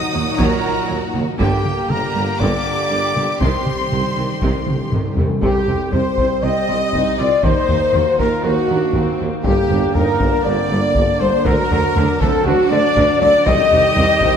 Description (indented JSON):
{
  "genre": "cinematic, epic orchestral film score",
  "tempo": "119 BPM",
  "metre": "4/4",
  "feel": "straight",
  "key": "unclear",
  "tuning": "A4 = 440 Hz",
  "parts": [
    { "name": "warm symphonic violin section", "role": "melody", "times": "0.0-14.4 s", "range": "Gb4 to Eb6", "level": "-26 LUFS", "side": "left 3 dB", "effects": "none" },
    { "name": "rich symphonic violin section", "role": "second line", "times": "0.0-14.4 s", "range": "Bb3 to Eb5", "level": "-28 LUFS", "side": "left 2 dB", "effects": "none" },
    { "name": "dark French horn section", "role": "sustained chords", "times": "0.0-14.4 s", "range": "Bb3 to Eb5", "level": "-20 LUFS", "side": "left 4 dB", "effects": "none" },
    { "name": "warm trombone section", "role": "sustained chords", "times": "0.0-14.4 s", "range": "Bb2 to C4", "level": "-26 LUFS", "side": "right 4 dB", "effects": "none" },
    { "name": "mellow trumpet", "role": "stabs", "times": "0.0-14.4 s", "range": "Gb4 to Eb5", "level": "-23 LUFS", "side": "right 1 dB", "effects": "none" },
    { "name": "rich symphonic viola section", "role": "accompaniment", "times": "0.1-14.4 s", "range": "C3 to G4", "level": "-27 LUFS", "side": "right 2 dB", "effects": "none" },
    { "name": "clear symphonic double bass section", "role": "bass", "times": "0.1-14.3 s", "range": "G1 to Eb2", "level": "-26 LUFS", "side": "right 3 dB", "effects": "none" },
    { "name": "rich symphonic cello section", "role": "bass", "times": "0.1-14.3 s", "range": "Eb2 to Eb3", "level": "-26 LUFS", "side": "right 2 dB", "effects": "none" },
    { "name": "warm tuba", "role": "bass", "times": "0.1-14.3 s", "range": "G1 to Eb2", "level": "-25 LUFS", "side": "right 3 dB", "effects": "none" },
    { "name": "taiko ensemble", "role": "drums", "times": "0.4-14.4 s", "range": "none", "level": "-22 LUFS", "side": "equal", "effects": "none" },
    { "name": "timpani", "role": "percussion", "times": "3.4-6.1, 9.4-10.2, 13.5-14.2 s", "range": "G2 to C3", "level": "-26 LUFS", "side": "equal", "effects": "none" },
    { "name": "flute section", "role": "second line", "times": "5.4-14.4 s", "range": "Gb4 to Eb5", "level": "-26 LUFS", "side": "right 1 dB", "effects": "none" }
  ],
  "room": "wet scoring stage reverb, RT60 1.9 s",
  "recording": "none",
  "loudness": "-14 LUFS",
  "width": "side -7 dB against mid",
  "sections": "0.0-5.4 A section; 5.4-14.4 B section",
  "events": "timpani fill 3.4-5.4; drum fill 4.7-5.4",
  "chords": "0.0 Ebm; 1.4 Gm; 3.4 Cm; 7.4 Ebm; 9.4 Gm; 11.5 D; 13.5 Cm"
}